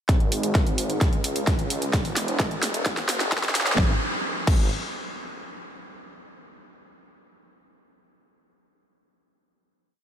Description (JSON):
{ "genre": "EDM, festival progressive house", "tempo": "130 BPM", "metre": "4/4", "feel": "straight", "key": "unclear", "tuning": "A4 = 440 Hz", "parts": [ { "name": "wide detuned saw bass", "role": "bass", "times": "0.1-4.7 s", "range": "E1 to C#2", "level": "-29 LUFS", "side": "equal", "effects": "chorus, sidechain pumping, high-pass filter" }, { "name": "big-room dance drum kit", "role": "drums", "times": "0.1-4.6 s", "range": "crash cymbal, hi-hat, snare drum", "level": "-27 LUFS", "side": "equal", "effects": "overdrive, high-pass filter on snare, high-pass filter on hats, high-pass filter on cymbals" }, { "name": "electronic kick drum", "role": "drums", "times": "0.1-4.6 s", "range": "none", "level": "-22 LUFS", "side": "equal", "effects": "none" } ], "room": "moderate huge ambient reverb, RT60 6.2 s", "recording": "high-pass filter", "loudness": "-21 LUFS", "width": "side -9 dB against mid", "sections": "0.1-3.8 build; 3.8-5.6 final note", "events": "build-up 0.1-3.8; drum fill 0.1-3.8; filter sweep 0.1-3.8", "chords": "none" }